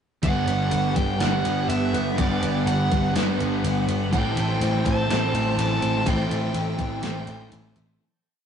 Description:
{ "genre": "rock, shoegaze and dream pop", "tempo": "124 BPM", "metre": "4/4", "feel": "straight", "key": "G major", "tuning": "A4 = 440 Hz", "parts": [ { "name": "nasal lead guitar with a parked wah", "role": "melody", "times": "0.2-7.5 s", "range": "D5 to A5", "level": "-29 LUFS", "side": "right 2 dB", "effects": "overdrive" }, { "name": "string machine, violins", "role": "sustained chords", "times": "0.2-8.0 s", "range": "B3 to G5", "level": "-30 LUFS", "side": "equal", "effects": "phaser, ensemble chorus" }, { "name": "overdriven semi-hollow guitar", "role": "riff", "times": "0.2-8.0 s", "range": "G2 to E4", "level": "-27 LUFS", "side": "right 3 dB", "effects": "none" }, { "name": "thick fuzz guitar", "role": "riff", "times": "0.2-8.0 s", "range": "G2 to A3", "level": "-29 LUFS", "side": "left 4 dB", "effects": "distortion" }, { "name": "vintage muted picked electric bass", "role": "bass", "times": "0.2-8.0 s", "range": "G1 to A1", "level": "-28 LUFS", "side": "equal", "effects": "none" }, { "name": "crisp 8-bit digital drum machine", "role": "drums", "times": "0.2-7.9 s", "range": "kick drum, ride cymbal, snare drum", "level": "-29 LUFS", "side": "equal", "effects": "overdrive" }, { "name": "electric guitar through a small old amp", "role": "arpeggios", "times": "0.5-8.0 s", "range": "E3 to D4", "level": "-34 LUFS", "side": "equal", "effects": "none" } ], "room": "wet studio reverb, RT60 0.5 s", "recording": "rough rehearsal-room recording, tube saturation, nothing above 10.7 kHz", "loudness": "-21 LUFS", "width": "side -8 dB against mid", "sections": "0.2-8.0 verse", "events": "fade-out 6.1-8.0", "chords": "0.2 Gmaj7; 4.1 Am7", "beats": "| 0.23 0.72 1.21 1.69 | 2.18 2.67 3.15 3.64 | 4.12 4.61 5.09 5.58 | 6.06 6.54 7.03 7.52" }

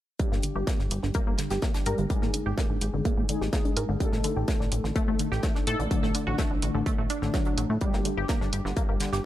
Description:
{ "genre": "melodic techno", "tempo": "126 BPM", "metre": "4/4", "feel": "straight", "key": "unclear", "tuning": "A4 = 440 Hz", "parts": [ { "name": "tight sequenced synth", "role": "arpeggios", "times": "0.2-9.2 s", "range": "D3 to Bb4", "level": "-32 LUFS", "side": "right 1 dB", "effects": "chorus, sidechain pumping, digital delay" }, { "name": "analog synth brass", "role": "stabs", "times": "0.2-9.3 s", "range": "D3 to A4", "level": "-32 LUFS", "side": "left 2 dB", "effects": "chorus, sidechain pumping, digital delay" }, { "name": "damped 70s drum kit", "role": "drums", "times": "0.2-9.2 s", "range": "hi-hat, snare drum", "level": "-41 LUFS", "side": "left 2 dB", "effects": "high-pass filter on hats, high-pass filter on snare, high-pass filter on room" }, { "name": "electronic kick drum", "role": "drums", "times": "0.2-8.9 s", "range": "none", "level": "-28 LUFS", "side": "equal", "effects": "distortion" }, { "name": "plucky analog bass", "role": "bass", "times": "0.3-9.2 s", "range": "G1 to A2", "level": "-30 LUFS", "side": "equal", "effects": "sidechain pumping" }, { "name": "electronic hi-hat", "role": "drums", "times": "0.4-9.1 s", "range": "none", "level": "-32 LUFS", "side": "right 1 dB", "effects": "none" } ], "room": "light reverb, small room ambience", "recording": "bright 1980s-style digital production, lossy compression artefacts", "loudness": "-25 LUFS", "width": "side -13 dB against mid", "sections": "0.2-9.3 A section", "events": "filter sweep on analog polysynth 0.2-9.3", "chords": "0.2 Gm; 2.1 Ab5; 4.0 Ebmaj7#11/A; 5.9 D/A; 7.8 Gm", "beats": "| 0.20 0.67 1.15 1.62 | 2.10 2.58 3.05 3.53 | 4.00 4.48 4.96 5.43 | 5.91 6.39 6.86 7.34 | 7.82 8.29 8.77 9.24" }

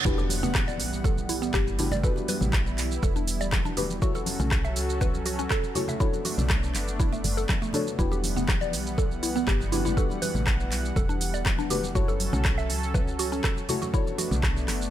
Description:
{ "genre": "afro house", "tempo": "121 BPM", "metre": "4/4", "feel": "straight", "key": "E dorian", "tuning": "A4 = 440 Hz", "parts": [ { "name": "warm analog pad", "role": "sustained chords", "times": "0.0-14.9 s", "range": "E3 to F#5", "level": "-34 LUFS", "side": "equal", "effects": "chorus, sidechain pumping" }, { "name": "reverse cymbal and impact", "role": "sound effects", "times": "0.0-2.0 s", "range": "none", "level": "-33 LUFS", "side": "right 2 dB", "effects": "none" }, { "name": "mallet-like synth pluck", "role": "arpeggios", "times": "0.1-14.3 s", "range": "A3 to E5", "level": "-32 LUFS", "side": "right 1 dB", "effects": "chorus, phaser, sidechain pumping, ping-pong delay" }, { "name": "deep mellow chord stab", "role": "stabs", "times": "0.1-14.9 s", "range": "D4 to C#5", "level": "-35 LUFS", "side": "left 5 dB", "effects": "chorus, phaser, sidechain pumping, ping-pong delay" }, { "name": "woody FM bass", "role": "bass", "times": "0.1-14.9 s", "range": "E1 to C#2", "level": "-30 LUFS", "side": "equal", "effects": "sidechain pumping" }, { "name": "afro-pop drum kit", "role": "drums", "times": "0.1-14.9 s", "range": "handclaps, hi-hat, rim click, shaker", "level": "-31 LUFS", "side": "right 1 dB", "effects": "low-pass filter on perc, low-pass filter on hats, low-pass filter on snare" }, { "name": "electronic kick drum", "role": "drums", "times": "0.1-14.5 s", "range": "none", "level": "-26 LUFS", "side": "equal", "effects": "none" }, { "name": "congas", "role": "percussion", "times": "0.1-14.8 s", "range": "none", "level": "-35 LUFS", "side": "left 1 dB", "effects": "none" } ], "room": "little or no reverb", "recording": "none", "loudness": "-24 LUFS", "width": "side -12 dB against mid", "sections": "0.1-14.9 A section", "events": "drop 0.1-14.9; impact 0.1-2.0", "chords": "0.1 Em7; 4.0 F#m7; 6.0 Bm9; 8.0 Em7; 12.0 F#m7; 13.9 Bm9", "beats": "| 0.05 0.55 1.04 1.54 | 2.04 2.53 3.03 3.52 | 4.02 4.52 5.01 5.51 | 6.00 6.50 7.00 7.49 | 7.99 8.48 8.98 9.47 | 9.97 10.47 10.96 11.46 | 11.95 12.45 12.95 13.44 | 13.94 14.43" }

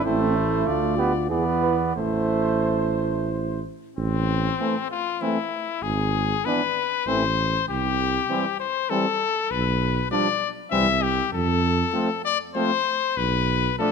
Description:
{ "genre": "classical, brass quintet", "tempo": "97 BPM", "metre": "3/4", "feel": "rubato", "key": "A minor", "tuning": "A4 = 441 Hz", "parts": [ { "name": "brilliant trumpet", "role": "melody", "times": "0.0-13.9 s", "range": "C4 to E5", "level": "-25 LUFS", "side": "left 9 dB", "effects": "none" }, { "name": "mellow flugelhorn", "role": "second line", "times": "0.0-13.9 s", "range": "C4 to C5", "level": "-30 LUFS", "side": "right 8 dB", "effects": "none" }, { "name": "brilliant trombone", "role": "accompaniment", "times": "0.0-13.9 s", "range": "E3 to B3", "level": "-28 LUFS", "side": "right 3 dB", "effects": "none" }, { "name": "mellow French horn", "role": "accompaniment", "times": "0.0-13.9 s", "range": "G3 to F4", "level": "-30 LUFS", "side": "left 3 dB", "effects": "none" }, { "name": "mellow tuba", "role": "bass", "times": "0.0-13.7 s", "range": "G#1 to F2", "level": "-26 LUFS", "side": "right 4 dB", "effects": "none" } ], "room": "moderate scoring stage reverb, RT60 1.9 s", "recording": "close, detailed microphones", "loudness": "-21 LUFS", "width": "side -6 dB against mid", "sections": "0.0-4.0 A section; 4.0-13.9 B section", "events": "none", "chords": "0.1 Am; 0.7 Dm; 1.3 E7; 2.0 Am; 5.8 E/G#; 7.1 Am; 7.7 C; 9.5 G7/B; 10.7 C; 11.3 F; 13.2 B7(b5, no3)", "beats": "| 0.05 0.67 1.30 | 1.97 2.65 3.31 | 3.97 4.59 5.21 | 5.83 6.45 7.07 | 7.68 8.29 8.90 | 9.51 10.12 10.72 | 11.33 11.94 12.55 | 13.17 13.79" }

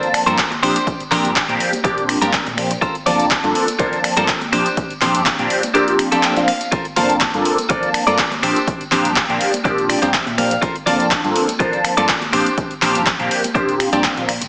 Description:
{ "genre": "filtered disco house", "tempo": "123 BPM", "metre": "4/4", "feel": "swing 53% on 16ths", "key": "unclear", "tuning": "A4 = 441 Hz", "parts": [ { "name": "funky polysynth comp", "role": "accompaniment", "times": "0.0-14.3 s", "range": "F3 to A5", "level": "-18 LUFS", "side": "equal", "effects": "chorus, phaser, vintage 12-bit sampler grit, sidechain pumping, low-pass filter" }, { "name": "clean electric guitar", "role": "riff", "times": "0.0-14.4 s", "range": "D4 to G5", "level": "-20 LUFS", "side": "equal", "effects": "sidechain pumping, low-pass filter" }, { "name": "punchy analog drum machine", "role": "drums", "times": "0.0-14.5 s", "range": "finger snaps, handclaps, hi-hat", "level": "-20 LUFS", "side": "equal", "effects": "sidechain pumping on hats" }, { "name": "tambourine and congas", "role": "percussion", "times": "0.0-14.5 s", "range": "none", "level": "-30 LUFS", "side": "equal", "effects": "sidechain pumping on perc, low-pass filter on perc" }, { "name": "hollow-body short-scale fingered electric bass", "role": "bass", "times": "0.3-14.5 s", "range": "F1 to Bb2", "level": "-30 LUFS", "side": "equal", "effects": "sidechain pumping, low-pass filter" }, { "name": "electronic kick drum", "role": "drums", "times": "0.4-14.1 s", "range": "none", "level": "-25 LUFS", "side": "equal", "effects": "none" } ], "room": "moderate echo chamber reverb, RT60 1.6 s, digital ambience", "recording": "heavily compressed radio sound, multiband compression, small speaker sound", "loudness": "-14 LUFS", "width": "side -38 dB against mid", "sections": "0.0-14.5 A section", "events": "clean electric guitar fill 6.0-6.7, 9.7-10.6", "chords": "0.0 Gm11 (rootless); 0.6 Bb69; 2.8 Gm11; 4.5 Bb69; 6.7 Gm11; 8.4 Bb69; 10.6 Gm11; 12.3 Bb69", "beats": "0.38 | 0.87 1.36 1.85 2.33 | 2.82 3.31 3.80 4.29 | 4.77 5.26 5.75 6.24 | 6.72 7.21 7.70 8.19 | 8.68 9.16 9.65 10.14 | 10.63 11.11 11.60 12.09 | 12.58 13.06 13.55 14.04" }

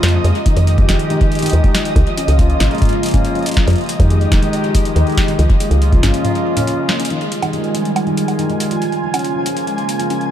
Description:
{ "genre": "IDM", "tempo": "140 BPM", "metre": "4/4", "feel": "straight", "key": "F minor", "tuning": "A4 = 440 Hz", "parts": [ { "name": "warbly tape-like pad", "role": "sustained chords", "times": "0.0-10.3 s", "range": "Db3 to G4", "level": "-21 LUFS", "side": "right 2 dB", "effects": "chorus, built-in reverb" }, { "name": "felt-muted upright piano", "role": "arpeggios", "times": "0.0-10.3 s", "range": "Eb3 to F4", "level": "-21 LUFS", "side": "left 4 dB", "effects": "low-pass filter, digital delay" }, { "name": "woody FM bass", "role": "bass", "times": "0.0-6.1 s", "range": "F1 to F2", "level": "-14 LUFS", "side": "equal", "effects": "none" }, { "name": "booming analog drum machine", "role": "drums", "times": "0.0-10.3 s", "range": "bongos, hi-hat, snare drum, toms", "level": "-22 LUFS", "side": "right 1 dB", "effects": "ping-pong delay" }, { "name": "flickering grainy texture", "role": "texture", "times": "0.0-10.3 s", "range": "Eb5 to Ab5", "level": "-25 LUFS", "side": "right 1 dB", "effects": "built-in reverb" }, { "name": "electronic kick drum", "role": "drums", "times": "0.5-6.0 s", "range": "none", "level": "-15 LUFS", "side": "equal", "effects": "none" } ], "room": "light reverb", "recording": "none", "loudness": "-13 LUFS", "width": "side -10 dB against mid", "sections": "0.0-7.1 A section; 7.1-10.3 B section", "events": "break 6.2-7.1; drum fill 6.9; band accent 6.9", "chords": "0.2 Fm9; 2.0 Db6; 3.7 Fm9; 5.4 Db6; 7.1 Fm9; 8.8 Db6", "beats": "| 0.25 0.67 1.10 1.53 | 1.96 2.39 2.82 3.25 | 3.67 4.10 4.53 4.96 | 5.39 5.82 6.25 6.67 | 7.10 7.53 7.96 8.39 | 8.82 9.25 9.67 10.10" }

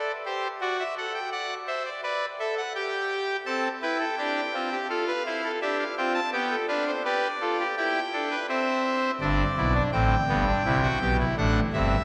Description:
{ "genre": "classical, baroque-style 4-part fugue for pipe organ", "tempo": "84 BPM", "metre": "4/4", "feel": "straight", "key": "C major", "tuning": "A4 = 439 Hz", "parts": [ { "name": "pipe organ, trumpet", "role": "solo", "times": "0.0-12.0 s", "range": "G1 to A5", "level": "-27 LUFS", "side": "equal", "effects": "none" } ], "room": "wet cathedral reverb, RT60 5.3 s", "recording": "none", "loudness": "-27 LUFS", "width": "mono", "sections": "0.0-12.0 A section", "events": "none", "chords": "0.0 Am7; 0.6 D7/F#; 2.0 G; 3.5 C; 6.3 G7/B; 7.8 C; 9.2 G; 10.7 Am7", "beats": "| 0.61 1.32 2.03 2.75 | 3.46 4.18 4.90 5.62 | 6.33 7.06 7.78 8.50 | 9.22 9.93 10.65 11.38" }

